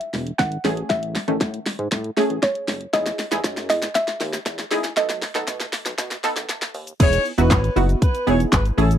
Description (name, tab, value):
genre	dance-pop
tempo	118 BPM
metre	4/4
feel	straight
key	E major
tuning	A4 = 441 Hz
part	soft round pluck	melody	0.0-6.5 s	C#5 to F#5	-24 LUFS	right 1 dB	chorus, tape echo
part	punchy chord stab	accompaniment	0.0-9.0 s	D#3 to A4	-24 LUFS	right 1 dB	chorus, sidechain pumping
part	pop drum kit	drums	0.0-9.0 s	crash cymbal, handclaps, hi-hat, kick drum, shaker, snare drum	-22 LUFS	equal	none
part	chorused synth bass	bass	0.1-9.0 s	E1 to B2	-24 LUFS	equal	sidechain pumping
part	warm horn section	melody	7.0-8.9 s	A3 to C#5	-23 LUFS	left 2 dB	sidechain pumping, tape echo
room	little or no reverb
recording	dry, close 1970s-style studio recording, high-pass filter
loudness	-19 LUFS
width	side -10 dB against mid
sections	0.0-7.0 A section; 7.0-9.0 B section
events	build-up 0.0-7.0; drum fill 0.0-7.0; filter sweep 0.0-7.0; drop 7.0-9.0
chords	0.0 Emaj7; 0.6 Amaj7; 2.9 Emaj7; 5.0 B7; 7.0 Emaj7